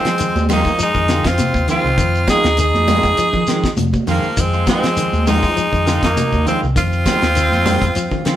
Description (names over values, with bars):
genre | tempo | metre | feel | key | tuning
afrobeat | 100 BPM | 4/4 | swing 54% on 16ths | F minor | A4 = 438 Hz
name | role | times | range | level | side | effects
raspy tenor saxophone | melody | 0.0-8.4 s | Bb3 to Ab4 | -18 LUFS | equal | none
growling trombone | second line | 0.0-8.4 s | F3 to Eb4 | -24 LUFS | right 1 dB | none
semi-hollow electric guitar | arpeggios | 0.0-8.4 s | C3 to Ab3 | -24 LUFS | left 5 dB | none
electric guitar at the edge of break-up | stabs | 0.0-8.4 s | Eb3 to F4 | -25 LUFS | right 3 dB | none
fingered electric bass | bass | 0.0-8.4 s | C2 to F3 | -20 LUFS | equal | none
damped 70s drum kit | drums | 0.0-8.4 s | hi-hat, kick drum, snare drum | -22 LUFS | left 1 dB | none
shekere | percussion | 0.1-8.4 s | none | -28 LUFS | left 1 dB | none
congas | percussion | 0.2-8.2 s | none | -23 LUFS | right 2 dB | none
room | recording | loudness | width
moderate studio reverb, RT60 0.7 s | band playing live in one room | -13 LUFS | side -12 dB against mid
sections
0.0-8.4 A section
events
none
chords
0.0 Fm7